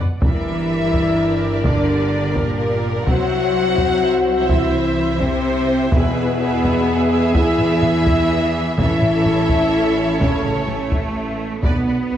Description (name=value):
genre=cinematic, epic orchestral film score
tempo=84 BPM (dotted quarters)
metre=6/8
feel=straight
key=unclear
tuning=A4 = 442 Hz
part: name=rich symphonic violin section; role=second line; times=0.0-12.2 s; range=Bb4 to F#5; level=-28 LUFS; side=left 2 dB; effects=none
part: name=rich studio viola section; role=accompaniment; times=0.0-12.2 s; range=G#4 to E5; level=-27 LUFS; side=right 3 dB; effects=none
part: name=clear symphonic double bass section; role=bass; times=0.0-12.2 s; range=G1 to E2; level=-26 LUFS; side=right 2 dB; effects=none
part: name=rich symphonic cello section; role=bass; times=0.0-12.2 s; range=Bb2 to B3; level=-23 LUFS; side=right 2 dB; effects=none
part: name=clear symphonic violin section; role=melody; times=0.2-12.2 s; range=Bb4 to F#5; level=-30 LUFS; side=left 2 dB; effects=none
part: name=mellow French horn section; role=sustained chords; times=0.2-12.2 s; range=D3 to F#4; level=-20 LUFS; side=left 3 dB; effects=none
part: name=rich symphonic string section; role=sustained chords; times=0.2-11.6 s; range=B3 to E5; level=-26 LUFS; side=equal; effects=none
part: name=taiko ensemble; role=drums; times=0.2-12.1 s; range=none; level=-20 LUFS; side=equal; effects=none
part: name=timpani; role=percussion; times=11.6-12.2 s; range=B2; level=-27 LUFS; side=right 1 dB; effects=none
room=moderate scoring stage reverb, RT60 1.5 s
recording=worn, warbling old tape, cassette tape, warbly pitch drift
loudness=-15 LUFS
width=side -10 dB against mid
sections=0.2-11.6 A section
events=drum fill 0.0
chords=0.2 Gm; 3.1 C; 5.9 E; 8.8 A; 11.6 Bm